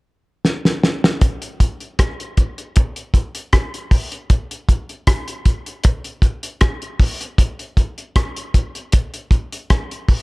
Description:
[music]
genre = reggae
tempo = 78 BPM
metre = 4/4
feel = straight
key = none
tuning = none
[part]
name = cloth-damped thuddy drum kit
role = drums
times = 0.4-10.2 s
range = hi-hat, kick drum, rim click, snare drum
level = -15 LUFS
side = equal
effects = none
[sound]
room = little or no reverb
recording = none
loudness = -17 LUFS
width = side -26 dB against mid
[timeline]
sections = 0.0-1.2 A section; 1.2-10.2 B section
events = drum fill 0.4-1.2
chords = none

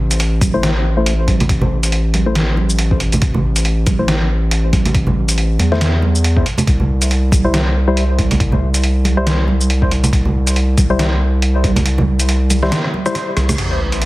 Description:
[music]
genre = deep dubstep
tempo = 139 BPM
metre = 4/4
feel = swing 57% on 16ths, half-time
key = unclear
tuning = A4 = 440 Hz
[part]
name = saturated sub bass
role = bass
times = 0.0-14.1 s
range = A1 to E2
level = -15 LUFS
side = equal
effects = none
[part]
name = trip hop sampler-style drum kit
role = drums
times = 0.1-14.1 s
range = crash cymbal, hi-hat, rim click, shaker, snare drum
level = -20 LUFS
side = equal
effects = overdrive
[part]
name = electronic kick drum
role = drums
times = 0.4-11.7 s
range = none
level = -17 LUFS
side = equal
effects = overdrive
[part]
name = congas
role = percussion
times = 0.4-13.6 s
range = none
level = -21 LUFS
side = right 2 dB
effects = none
[part]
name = percussive organ stab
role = stabs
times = 0.5-13.1 s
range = G3 to C5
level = -21 LUFS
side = left 2 dB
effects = chorus, dub echo
[part]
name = dark analog pad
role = sustained chords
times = 13.6-14.1 s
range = A3 to B4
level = -26 LUFS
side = equal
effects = chorus, phaser
[part]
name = sub drop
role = sound effects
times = 13.6-14.1 s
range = none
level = -22 LUFS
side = equal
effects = none
[sound]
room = light reverb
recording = heavily compressed radio sound, multiband compression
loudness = -13 LUFS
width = side -19 dB against mid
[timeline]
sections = 0.0-13.6 A section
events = filter sweep on synth stab 0.0-13.6; kick drops out 11.9-13.6; drum fill 12.7-13.6; band accent 13.5; impact 13.6-14.1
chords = 0.0 Am; 6.7 C

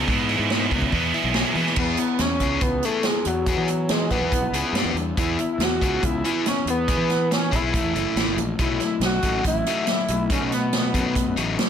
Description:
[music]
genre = indie rock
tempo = 141 BPM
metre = 4/4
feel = straight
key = E major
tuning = A4 = 442 Hz
[part]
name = crunchy overdriven guitar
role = riff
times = 0.0-11.7 s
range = E3 to G#4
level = -26 LUFS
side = left 7 dB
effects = none
[part]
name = scooped high-gain guitar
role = riff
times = 0.0-1.8 s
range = E2 to E4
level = -24 LUFS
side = right 11 dB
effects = distortion, analog chorus, analog delay
[part]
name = fuzz fingered electric bass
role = bass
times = 0.0-11.6 s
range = F#1 to E3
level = -28 LUFS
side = right 1 dB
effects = overdrive
[part]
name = unplugged drum kit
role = drums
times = 0.1-11.7 s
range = crash cymbal, hi-hat, kick drum, snare drum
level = -26 LUFS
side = right 1 dB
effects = none
[part]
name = overdriven synth lead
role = melody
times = 1.8-11.3 s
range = F#3 to F#4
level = -25 LUFS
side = equal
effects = chorus, analog delay
[sound]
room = light reverb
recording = none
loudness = -20 LUFS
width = side -8 dB against mid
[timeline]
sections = 0.0-1.8 A section; 1.8-11.7 B section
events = none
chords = 0.0 E; 4.7 G5; 5.2 E; 7.7 A5; 8.6 B7sus4

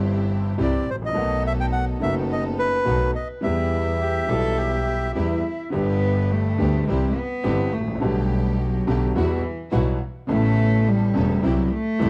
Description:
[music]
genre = tango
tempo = 105 BPM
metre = 4/4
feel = rubato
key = E minor, G major from 5.7 s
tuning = A4 = 442 Hz
[part]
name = clear grand piano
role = accompaniment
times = 0.0-12.1 s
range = E1 to G4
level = -27 LUFS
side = equal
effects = none
[part]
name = rich studio string section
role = stabs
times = 0.0-12.1 s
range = G3 to A4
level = -36 LUFS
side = equal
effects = none
[part]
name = clear double bass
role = bass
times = 0.0-12.1 s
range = E1 to E2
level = -27 LUFS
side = equal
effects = none
[part]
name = bandoneon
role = melody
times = 0.6-5.1 s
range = B4 to G5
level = -29 LUFS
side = equal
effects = tape echo
[part]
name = warm cello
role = second line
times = 4.0-12.1 s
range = E3 to A4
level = -28 LUFS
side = equal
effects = none
[sound]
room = little or no reverb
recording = dry, close 1970s-style studio recording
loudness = -22 LUFS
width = mono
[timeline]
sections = 0.0-5.7 A section; 5.7-12.1 B section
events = cello solo 5.7-12.1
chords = 0.0 C; 1.2 B7; 3.4 Em; 5.7 G; 6.9 C; 8.0 Gadd9/B; 9.2 Emadd9; 10.3 Aadd9; 11.4 C

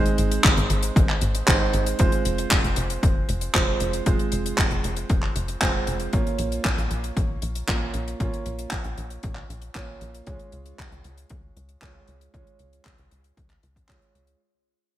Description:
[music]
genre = italo disco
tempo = 116 BPM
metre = 4/4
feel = straight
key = unclear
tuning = A4 = 440 Hz
[part]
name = clear baby grand piano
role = stabs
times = 0.0-14.4 s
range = Ab3 to Db5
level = -29 LUFS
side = right 5 dB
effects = low-pass filter, ping-pong delay
[part]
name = tight sequencer bass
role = bass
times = 0.0-14.4 s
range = F1 to Db2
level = -28 LUFS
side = left 1 dB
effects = none
[part]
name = damped 70s drum kit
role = drums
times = 0.1-14.4 s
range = handclaps, hi-hat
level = -26 LUFS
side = equal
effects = studio reverb, gated reverb
[part]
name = electronic kick drum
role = drums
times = 0.4-14.0 s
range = none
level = -23 LUFS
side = equal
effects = overdrive, studio reverb
[sound]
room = light reverb, studio reverb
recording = bright 1980s-style digital production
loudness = -21 LUFS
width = side -13 dB against mid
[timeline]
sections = 0.0-14.4 A section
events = fade-out 0.0-14.4; filter sweep on grand piano 0.0-14.4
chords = 0.0 Ab; 2.0 Fm; 6.1 Bbm; 10.3 Db

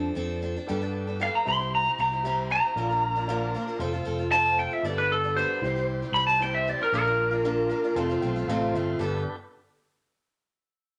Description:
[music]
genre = folk rock and heartland rock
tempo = 115 BPM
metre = 4/4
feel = straight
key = unclear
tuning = A4 = 436 Hz
[part]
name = lightly driven lead guitar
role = melody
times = 0.0-7.9 s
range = D4 to C6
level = -27 LUFS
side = equal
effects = none
[part]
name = picked steel-string acoustic guitar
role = accompaniment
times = 0.0-9.2 s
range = F2 to Bb4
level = -35 LUFS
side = equal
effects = none
[part]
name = fingered electric bass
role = bass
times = 0.0-9.2 s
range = F1 to G2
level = -35 LUFS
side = equal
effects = none
[part]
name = clear upright piano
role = accompaniment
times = 0.7-9.2 s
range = B3 to Bb5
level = -36 LUFS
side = equal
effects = none
[part]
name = tonewheel organ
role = sustained chords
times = 0.7-9.4 s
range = A3 to D5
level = -42 LUFS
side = equal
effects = overdrive
[sound]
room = moderate large studio reverb, RT60 0.9 s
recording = none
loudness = -26 LUFS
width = mono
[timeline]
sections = 0.7-9.0 A section; 9.0-11.0 B section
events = lead electric guitar solo 0.7-9.0; upright piano fill 7.4-9.0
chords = 0.0 F6; 0.7 Gadd9; 1.5 C; 2.8 Bb; 3.8 F; 4.8 Gadd9; 5.6 C; 6.9 Bb; 8.0 F; 9.0 Gadd9

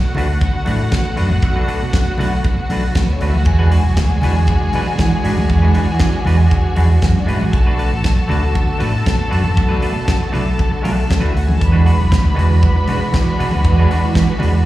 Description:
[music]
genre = disco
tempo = 118 BPM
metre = 4/4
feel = straight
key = unclear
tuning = A4 = 440 Hz
[part]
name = dark studio string section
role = second line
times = 0.0-14.7 s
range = A3 to B5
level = -24 LUFS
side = left 2 dB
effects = slapback echo
[part]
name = semi-hollow electric guitar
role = accompaniment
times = 0.0-14.6 s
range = G#3 to B4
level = -25 LUFS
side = right 3 dB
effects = slapback echo
[part]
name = clear studio string section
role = sustained chords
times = 0.0-14.7 s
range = D3 to F#4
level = -24 LUFS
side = equal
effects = none
[part]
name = fingered electric bass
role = bass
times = 0.0-14.6 s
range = A1 to E3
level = -15 LUFS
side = right 1 dB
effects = none
[part]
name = congas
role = percussion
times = 0.1-14.5 s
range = none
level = -24 LUFS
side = left 2 dB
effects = slapback echo
[part]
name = tight funk drum kit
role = drums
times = 0.2-14.5 s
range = hi-hat, kick drum, snare drum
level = -17 LUFS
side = equal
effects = none
[sound]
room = little or no reverb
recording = live gig heard through the venue's PA, recital hall reverb, small room ambience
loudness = -13 LUFS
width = side -15 dB against mid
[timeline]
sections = 0.0-14.7 A section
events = none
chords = 0.0 Bm7; 3.5 E9

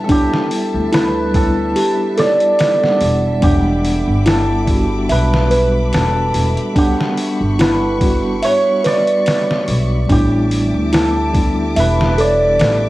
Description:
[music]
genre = trip hop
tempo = 72 BPM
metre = 4/4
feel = swing 55% on 16ths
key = E dorian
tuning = A4 = 442 Hz
[part]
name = cimbalom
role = melody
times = 0.0-12.9 s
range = G4 to D5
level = -18 LUFS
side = right 1 dB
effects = cassette tape, dub echo
[part]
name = mellow tine electric piano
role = accompaniment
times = 0.0-12.9 s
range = G3 to F#5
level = -21 LUFS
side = equal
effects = medium stereo tremolo, vintage 12-bit sampler grit, cassette tape, tape echo
[part]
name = rich studio string section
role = sustained chords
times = 0.0-12.9 s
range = G3 to D6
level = -30 LUFS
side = left 1 dB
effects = cassette tape
[part]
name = small celesta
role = arpeggios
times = 0.0-12.9 s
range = D4 to E5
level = -19 LUFS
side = right 1 dB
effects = cassette tape, tape echo
[part]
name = trip hop sampler-style drum kit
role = drums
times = 0.1-12.8 s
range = hi-hat, kick drum, snare drum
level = -19 LUFS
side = equal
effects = none
[part]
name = upright bass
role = bass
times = 0.7-12.9 s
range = E1 to D2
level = -18 LUFS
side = equal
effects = tube saturation
[sound]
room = studio reverb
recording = home recording on cassette, vinyl crackle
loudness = -13 LUFS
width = side -17 dB against mid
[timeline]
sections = 0.0-12.9 A section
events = none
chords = 0.0 A7sus4; 3.4 Em7; 10.1 A7sus4

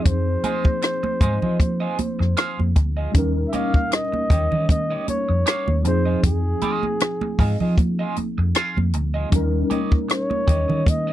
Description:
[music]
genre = lush 1970s-style soul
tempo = 78 BPM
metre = 4/4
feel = swing 54% on 16ths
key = F minor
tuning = A4 = 441 Hz
[part]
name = breathy flugelhorn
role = melody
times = 0.0-11.1 s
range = Ab4 to F5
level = -26 LUFS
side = equal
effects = none
[part]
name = tine electric piano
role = accompaniment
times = 0.0-11.1 s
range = F3 to Bb4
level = -27 LUFS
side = left 2 dB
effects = ensemble chorus
[part]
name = electric guitar at the edge of break-up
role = riff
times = 0.0-11.1 s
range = F4 to F5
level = -29 LUFS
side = right 5 dB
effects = wah, tremolo
[part]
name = vintage muted fingered electric bass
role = bass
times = 0.1-11.1 s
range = D2 to F3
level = -22 LUFS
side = equal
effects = none
[part]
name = compact cocktail drum kit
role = drums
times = 0.1-11.1 s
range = hi-hat, kick drum, rim click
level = -18 LUFS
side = equal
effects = none
[part]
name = congas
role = percussion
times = 0.1-11.1 s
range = none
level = -30 LUFS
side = right 6 dB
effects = none
[sound]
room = little or no reverb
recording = dry, close 1970s-style studio recording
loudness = -18 LUFS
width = side -13 dB against mid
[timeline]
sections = 0.0-11.1 A section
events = none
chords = 0.0 Fm7; 3.1 Eb7; 5.8 Fm7; 9.3 Eb7

